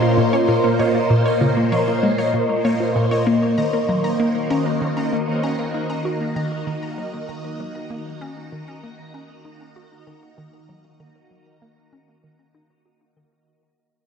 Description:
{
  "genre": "ambient, sequencer-driven space music",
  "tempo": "97 BPM",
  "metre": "4/4",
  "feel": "straight",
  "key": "unclear",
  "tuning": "A4 = 438 Hz",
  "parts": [
    { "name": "phased string machine", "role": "sustained chords", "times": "0.0-13.5 s", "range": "Bb2 to Bb5", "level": "-21 LUFS", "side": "equal", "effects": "ensemble chorus, phaser" },
    { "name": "wide unison pluck", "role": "arpeggios", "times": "0.0-13.4 s", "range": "Bb3 to Bb5", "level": "-27 LUFS", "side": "left 1 dB", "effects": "auto-pan, tape echo" },
    { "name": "hollow square pluck", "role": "riff", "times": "0.0-13.3 s", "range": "Bb2 to Gb4", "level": "-23 LUFS", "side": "left 1 dB", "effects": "chorus, tape echo" },
    { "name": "pulsing gated texture", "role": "texture", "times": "0.0-13.5 s", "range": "Eb5", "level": "-28 LUFS", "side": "equal", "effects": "chorus, built-in reverb" }
  ],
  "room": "wet lush hall reverb, RT60 2.6 s",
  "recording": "worn, warbling old tape, cassette tape, warbly pitch drift",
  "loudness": "-18 LUFS",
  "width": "side -7 dB against mid",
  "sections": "0.0-13.5 A section",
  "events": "fade-out on synth arpeggio sound 0.0-13.5; fade-out 0.0-13.5; filter sweep on synth arpeggio sound 0.0-13.5",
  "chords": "0.0 Bbmadd9; 3.6 Ebm",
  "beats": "0.48 | 1.10 1.72 2.34 2.96 | 3.58 4.20 4.81 5.43 | 6.05 6.67 7.29 7.91 | 8.53 9.14 9.76 10.38 | 11.00 11.62 12.24 12.86"
}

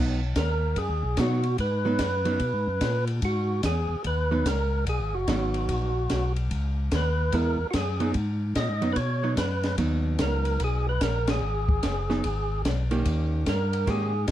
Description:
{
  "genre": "soul jazz organ trio",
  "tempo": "146 BPM",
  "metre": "4/4",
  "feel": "swing 65% on 8ths",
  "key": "G# minor",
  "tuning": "A4 = 440 Hz",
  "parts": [
    { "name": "archtop guitar, miked and amplified", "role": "accompaniment", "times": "0.0-14.1 s", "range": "D#3 to G4", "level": "-29 LUFS", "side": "right 3 dB", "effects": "none" },
    { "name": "tonewheel organ", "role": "bass", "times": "0.0-14.3 s", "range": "F#1 to B2", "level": "-27 LUFS", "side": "left 1 dB", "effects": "overdrive, chorus vibrato, slow rotary speaker" },
    { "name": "percussive tonewheel organ", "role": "melody", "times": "0.4-14.3 s", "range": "F#4 to D#5", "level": "-29 LUFS", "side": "right 2 dB", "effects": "slow rotary speaker, overdrive" },
    { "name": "compact cocktail drum kit", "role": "drums", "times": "0.4-14.3 s", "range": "hi-hat, kick drum, ride cymbal, snare drum", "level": "-31 LUFS", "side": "left 1 dB", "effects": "none" }
  ],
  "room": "light reverb",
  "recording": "dark, warm production",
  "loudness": "-24 LUFS",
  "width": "side -12 dB against mid",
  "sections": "0.0-14.3 A section",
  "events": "band accent 11.2",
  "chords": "0.0 G#m7; 6.5 C#m7; 8.1 G#m7; 13.1 D#7",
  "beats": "0.36 0.77 1.18 | 1.59 2.00 2.41 2.82 | 3.23 3.64 4.05 4.46 | 4.87 5.28 5.68 6.09 | 6.50 6.92 7.33 7.74 | 8.14 8.55 8.96 9.37 | 9.78 10.19 10.60 11.01 | 11.42 11.83 12.24 12.65 | 13.06 13.46 13.87 14.28"
}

